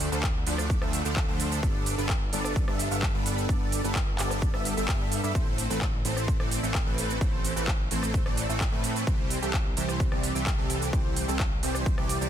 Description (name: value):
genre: EDM, festival progressive house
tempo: 129 BPM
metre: 4/4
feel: straight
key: A minor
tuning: A4 = 441 Hz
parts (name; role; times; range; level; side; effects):
- supersaw chords; riff; 0.0-12.3 s; E3 to F5; -30 LUFS; right 1 dB; analog chorus, sidechain pumping, ping-pong delay
- fat analog bass; bass; 0.0-12.3 s; G1 to A2; -32 LUFS; equal; sidechain pumping
- big-room dance drum kit; drums; 0.0-12.3 s; cabasa, handclaps, hi-hat, rim click; -33 LUFS; right 1 dB; none
- electronic kick drum; drums; 0.2-12.0 s; none; -28 LUFS; equal; none
room: light reverb, digital ambience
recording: dense, heavily limited modern master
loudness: -25 LUFS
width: side -10 dB against mid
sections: 0.0-12.3 A section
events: none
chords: 0.0 Dm; 1.6 Gadd9; 5.4 Am; 9.1 C